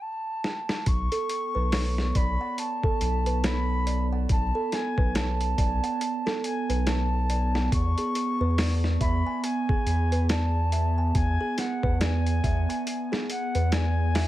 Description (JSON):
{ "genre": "trip hop", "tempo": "70 BPM", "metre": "4/4", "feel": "swing 59% on 16ths", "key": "B dorian", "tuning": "A4 = 440 Hz", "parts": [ { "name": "silver concert flute", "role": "melody", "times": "0.0-14.3 s", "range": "F#5 to C#6", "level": "-31 LUFS", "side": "left 1 dB", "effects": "tape echo" }, { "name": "boom bap sampler-style drum kit", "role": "drums", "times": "0.4-14.3 s", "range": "hi-hat, kick drum, snare drum", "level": "-28 LUFS", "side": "equal", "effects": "vintage 12-bit sampler grit" }, { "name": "warbly tape-like pad", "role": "sustained chords", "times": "1.2-14.3 s", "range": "B3", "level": "-33 LUFS", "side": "right 3 dB", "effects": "chorus, built-in reverb" }, { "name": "round analog bass", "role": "bass", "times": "0.9-14.3 s", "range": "B1 to E2", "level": "-25 LUFS", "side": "equal", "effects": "tube saturation" }, { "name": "music box", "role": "arpeggios", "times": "1.1-14.3 s", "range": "G#4 to G#5", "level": "-35 LUFS", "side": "right 3 dB", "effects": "tape echo" } ], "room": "little or no reverb", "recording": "vinyl crackle", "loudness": "-24 LUFS", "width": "side -14 dB against mid", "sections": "0.9-14.3 A section", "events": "break 0.0-0.9; drum fill 0.4-0.9", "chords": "0.0 N.C.; 0.9 Bm7; 7.7 E", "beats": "0.01 | 0.87 1.72 2.58 3.44 | 4.29 5.15 6.01 6.87 | 7.72 8.58 9.44 10.29 | 11.15 12.01 12.87 13.72" }